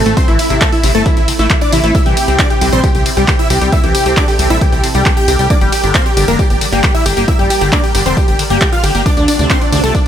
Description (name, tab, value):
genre	uplifting trance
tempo	135 BPM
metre	4/4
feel	straight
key	unclear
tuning	A4 = 440 Hz
part	supersaw stab	melody	0.0-10.0 s	A3 to G5	-16 LUFS	equal	sidechain pumping, ping-pong delay
part	supersaw stab	second line	0.0-10.0 s	A4 to G6	-22 LUFS	equal	sidechain pumping, tape echo
part	analog string pad	sustained chords	0.0-10.1 s	C3 to D5	-23 LUFS	right 2 dB	ensemble chorus, sidechain pumping
part	liquid acid bass	arpeggios	0.0-10.0 s	C3 to G4	-20 LUFS	left 4 dB	lush chorus, sidechain pumping, tape echo
part	plucky analog bass	bass	0.0-9.9 s	F1 to D2	-16 LUFS	equal	sidechain pumping
part	punchy analog drum machine	drums	0.1-10.0 s	handclaps, hi-hat, ride cymbal, tambourine	-19 LUFS	equal	none
part	electronic kick drum	drums	0.2-10.0 s	none	-14 LUFS	equal	none
room	digital ambience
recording	none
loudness	-10 LUFS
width	side -10 dB against mid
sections	0.0-10.1 A section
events	none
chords	0.0 Am; 1.9 C; 5.5 Gm; 9.1 Dm7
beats	| 0.17 0.61 1.06 1.50 | 1.95 2.39 2.84 3.28 | 3.73 4.17 4.61 5.06 | 5.50 5.95 6.39 6.84 | 7.28 7.72 8.17 8.61 | 9.06 9.50 9.95